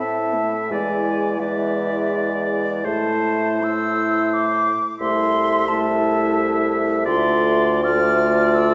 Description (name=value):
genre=classical, slow romantic movement for wind quintet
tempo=85 BPM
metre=3/4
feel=uneven beats, rubato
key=A minor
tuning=A4 = 439 Hz
part: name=concert flute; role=melody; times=0.0-8.7 s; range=E5 to F6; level=-26 LUFS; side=equal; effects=none
part: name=warm oboe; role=second line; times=0.0-8.7 s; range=C5 to E5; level=-27 LUFS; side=equal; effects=none
part: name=mellow clarinet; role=accompaniment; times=0.0-8.7 s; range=E4 to F4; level=-27 LUFS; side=equal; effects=none
part: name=warm French horn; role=accompaniment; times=0.0-8.7 s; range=G#3 to C4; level=-27 LUFS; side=equal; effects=none
part: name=warm bassoon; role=bass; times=0.0-8.7 s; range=C2 to A2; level=-26 LUFS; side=equal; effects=none
room=wet recital hall reverb, RT60 1.6 s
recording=heard from further back in the room, nothing above 7.8 kHz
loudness=-20 LUFS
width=mono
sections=0.0-8.7 A section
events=none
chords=0.0 Am; 0.7 E7; 2.9 Am; 5.0 Am/C; 7.1 Dm7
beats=0.00 | 0.70 1.41 2.13 | 2.86 3.63 4.34 | 5.01 5.69 6.38 | 7.07 7.85 8.55